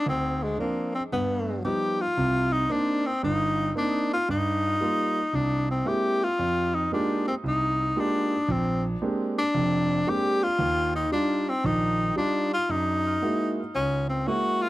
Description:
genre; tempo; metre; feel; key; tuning
jazz; 114 BPM; 4/4; swing 66% on 8ths; C minor; A4 = 440 Hz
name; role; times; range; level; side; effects
clear tenor saxophone; melody; 0.0-14.7 s; Ab3 to G4; -25 LUFS; left 1 dB; tape echo
clear concert grand piano; accompaniment; 0.1-14.6 s; F1 to G4; -27 LUFS; right 2 dB; none
room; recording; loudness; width
light reverb; dry, close 1970s-style studio recording; -23 LUFS; side -17 dB against mid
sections
0.0-2.2 A section; 2.2-14.7 B section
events
none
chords
0.1 Dm7; 1.1 G7b13; 2.2 Cm9; 4.3 Ebadd9/G; 5.3 C7b13; 6.4 Fm11; 8.5 Bb13; 10.6 Ebmaj9; 12.7 F#9

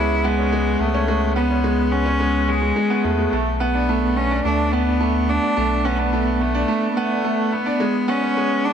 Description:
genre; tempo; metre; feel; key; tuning
piano and strings electronica; 107 BPM; 4/4; straight; B dorian; A4 = 440 Hz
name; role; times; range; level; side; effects
rich cello; melody; 0.0-8.7 s; G#3 to E4; -22 LUFS; left 1 dB; none
clear upright piano; riff; 0.0-8.7 s; G#3 to G#4; -21 LUFS; right 2 dB; none
warm sub bass; bass; 0.0-6.6 s; B1 to E2; -23 LUFS; left 1 dB; none
room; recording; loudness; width
light reverb, studio ambience; none; -17 LUFS; side -8 dB against mid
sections
0.0-8.7 A section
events
none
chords
0.0 C#7(no3); 3.3 Bm7; 7.8 C#5

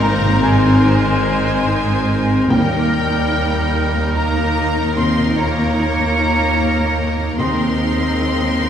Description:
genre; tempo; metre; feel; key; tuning
cinematic, emotional film score for orchestra; 73 BPM; 3/4; rubato; Ab major; A4 = 440 Hz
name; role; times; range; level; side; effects
warm studio violin section; melody; 0.0-8.7 s; Bb4; -27 LUFS; left 3 dB; none
bright concert flute; second line; 0.0-8.7 s; Bb4 to Eb5; -25 LUFS; equal; none
mellow clarinet; second line; 0.0-8.7 s; Ab4 to Bb4; -29 LUFS; right 1 dB; none
rich studio violin section; second line; 0.0-8.7 s; G5 to C6; -26 LUFS; left 1 dB; none
warm oboe; second line; 0.0-8.7 s; Bb4 to C5; -29 LUFS; left 2 dB; none
felt-muted upright piano; accompaniment; 0.0-8.7 s; Eb2 to C6; -21 LUFS; left 1 dB; none
rich studio viola section; accompaniment; 0.0-8.7 s; Ab3 to Eb4; -23 LUFS; right 1 dB; none
warm French horn section; sustained chords; 0.0-8.7 s; G3 to C4; -24 LUFS; left 2 dB; none
rich studio double bass section; bass; 0.0-8.7 s; Ab1 to Eb2; -22 LUFS; right 2 dB; none
warm studio cello section; bass; 0.0-8.7 s; Eb2 to Ab2; -23 LUFS; right 2 dB; none
timpani; percussion; 2.5-8.6 s; Eb3; -25 LUFS; right 1 dB; none
room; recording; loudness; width
wet recital hall reverb, RT60 1.7 s; recorded in a church or concert hall, small room ambience; -14 LUFS; side -9 dB against mid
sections
0.0-8.7 A section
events
none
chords
0.0 Abadd9; 2.5 Eb; 7.4 Abadd9/Eb

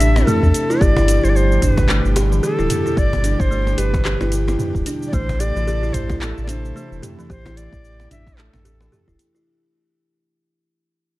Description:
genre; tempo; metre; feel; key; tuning
organic downtempo; 111 BPM; 4/4; swing 58% on 16ths; A minor; A4 = 444 Hz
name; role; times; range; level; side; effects
bright Native American-style cedar flute; melody; 0.0-9.2 s; A4 to E5; -24 LUFS; equal; tape echo
airy breathy pad; sustained chords; 0.0-9.4 s; B2 to A4; -27 LUFS; right 1 dB; chorus, sidechain pumping
buzzing kalimba; arpeggios; 0.0-9.4 s; E3 to G4; -23 LUFS; equal; tape echo
warm sub bass; bass; 0.0-9.2 s; D1 to E2; -18 LUFS; equal; tube saturation
deep house drum kit; drums; 0.0-9.4 s; cabasa, handclaps, hi-hat, toms; -26 LUFS; right 1 dB; overdrive
cajon; percussion; 0.2-9.3 s; none; -28 LUFS; left 1 dB; none
electronic kick drum; drums; 0.4-9.2 s; none; -20 LUFS; equal; overdrive
room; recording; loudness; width
little or no reverb; dark, warm production; -15 LUFS; side -18 dB against mid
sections
0.0-9.5 A section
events
fade-out 0.8-9.5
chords
0.0 Am; 0.8 G; 5.1 Am

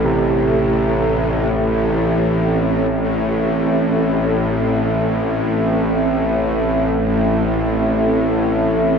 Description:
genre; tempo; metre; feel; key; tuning
dark ambient drone; free time; none; none; A minor; A4 = 442 Hz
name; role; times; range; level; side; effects
deep dark ambient pad; sustained chords; 0.0-9.0 s; C4 to E5; -21 LUFS; right 2 dB; chorus, built-in reverb
clear baby grand piano; arpeggios; 0.0-9.0 s; C3; -25 LUFS; right 3 dB; tape echo
bowed-like drone; drone; 0.0-9.0 s; A1 to A2; -17 LUFS; left 1 dB; built-in reverb
room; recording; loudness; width
wet cathedral reverb, RT60 5.0 s; worn, warbling old tape, cassette tape, warbly pitch drift; -15 LUFS; side -6 dB against mid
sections
0.0-9.0 A section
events
none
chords
0.0 Am

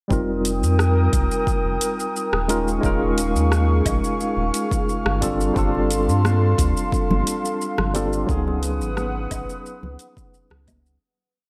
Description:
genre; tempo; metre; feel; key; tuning
sunset chillout; 88 BPM; 4/4; straight; F minor; A4 = 444 Hz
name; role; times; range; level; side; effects
barky tine electric piano; accompaniment; 0.1-11.0 s; Gb3 to Bb4; -26 LUFS; equal; low-pass filter, digital delay
airy breathy pad; sustained chords; 0.4-11.0 s; Ab4 to Eb6; -29 LUFS; equal; chorus
round analog bass; bass; 0.1-11.0 s; Eb1 to G2; -24 LUFS; equal; tube saturation
deep house drum kit; drums; 0.1-11.0 s; hi-hat, rim click, shaker, woodblock; -31 LUFS; equal; overdrive, studio reverb
electronic kick drum; drums; 0.1-10.8 s; none; -28 LUFS; equal; overdrive, studio reverb
bongos and congas; percussion; 5.7-10.8 s; none; -31 LUFS; equal; none
room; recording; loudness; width
light reverb; none; -21 LUFS; mono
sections
0.1-11.0 groove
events
fade-out 7.4-11.0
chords
0.1 F9sus4; 2.5 Eb9sus4; 5.2 G9sus4; 8.3 Db9sus4

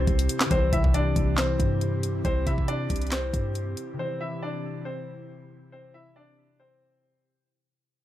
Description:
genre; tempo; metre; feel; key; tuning
hip hop, trap; 138 BPM; 4/4; half-time; C major; A4 = 440 Hz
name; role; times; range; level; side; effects
bright concert grand piano; melody; 0.0-7.4 s; C4 to E5; -31 LUFS; left 1 dB; low-pass filter, tape echo
concert harp; accompaniment; 0.0-7.5 s; C3 to E4; -33 LUFS; left 3 dB; low-pass filter
airy breathy pad; sustained chords; 0.0-7.4 s; C3 to G4; -35 LUFS; right 1 dB; chorus
warm 808-style bass; bass; 0.0-3.8 s; C2 to C3; -27 LUFS; equal; none
trap drum kit; drums; 0.1-3.9 s; handclaps, hi-hat, kick drum, snare drum; -26 LUFS; equal; none
room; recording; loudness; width
digital ambience; none; -24 LUFS; side -13 dB against mid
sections
0.5-7.5 A section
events
fade-out 0.5-7.5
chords
0.0 C

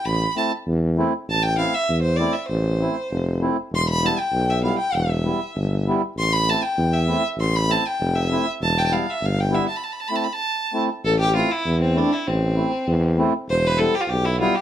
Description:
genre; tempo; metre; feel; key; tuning
klezmer; 98 BPM; 2/4; straight; A minor; A4 = 440 Hz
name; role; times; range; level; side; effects
rich violin; melody; 0.0-14.6 s; C4 to C6; -23 LUFS; equal; plate reverb
clear tuba; bass; 0.1-14.4 s; E1 to E2; -22 LUFS; equal; none
mellow accordion; accompaniment; 0.4-14.6 s; G3 to E4; -24 LUFS; equal; none
room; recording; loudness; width
light reverb; dark, warm production; -19 LUFS; side -10 dB against mid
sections
0.0-1.3 A section; 1.3-11.0 B section; 11.0-14.6 B section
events
violin solo 0.0-1.3; break 9.8-11.0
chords
0.1 Am; 3.7 Em; 6.2 Am; 8.6 Em; 9.8 Am; 13.5 Em

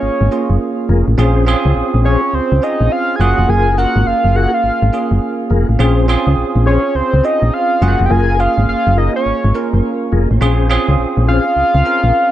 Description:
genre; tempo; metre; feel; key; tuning
R&B; 104 BPM; 4/4; swing 64% on 16ths; Bb minor; A4 = 439 Hz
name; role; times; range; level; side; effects
fat analog lead; melody; 0.0-12.3 s; C5 to Ab5; -17 LUFS; equal; chorus, tape echo
bell-like tine electric piano; accompaniment; 0.0-12.3 s; Ab3 to Bb4; -18 LUFS; right 4 dB; ensemble chorus
solid FM bass; bass; 0.0-12.1 s; F1 to Db2; -13 LUFS; equal; none
mellow tonewheel organ; stabs; 0.9-11.4 s; Db4 to C5; -22 LUFS; left 7 dB; chorus vibrato, slow rotary speaker, tape echo
room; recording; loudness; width
light reverb, digital ambience; none; -12 LUFS; side -13 dB against mid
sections
0.0-12.3 A section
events
none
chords
0.0 Gbmaj9 (rootless); 1.2 Bbm9; 3.2 Gbmaj9; 5.8 Bbm9; 7.8 Gbmaj9; 10.4 Bbm9

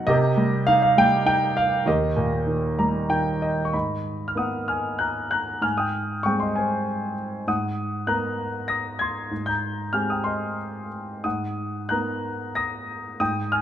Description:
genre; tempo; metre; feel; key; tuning
classical, lyrical solo piano; 90-103 BPM; 3/4; rubato; unclear; A4 = 440 Hz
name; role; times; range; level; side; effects
warm grand piano; solo; 0.0-13.6 s; Eb2 to A#6; -22 LUFS; equal; none
room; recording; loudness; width
moderate recital hall reverb, RT60 1.7 s; minimal, uncompressed stereo recording; -22 LUFS; side -10 dB against mid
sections
0.0-3.7 A section; 3.7-13.6 B section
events
grand piano fill 2.5-3.7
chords
0.1 Cm7; 1.9 Eb; 3.7 Bmaj7/Ab; 5.6 Abmaj7; 7.5 Bmaj7/Ab; 9.3 Abmaj7; 11.3 Bmaj7/Ab

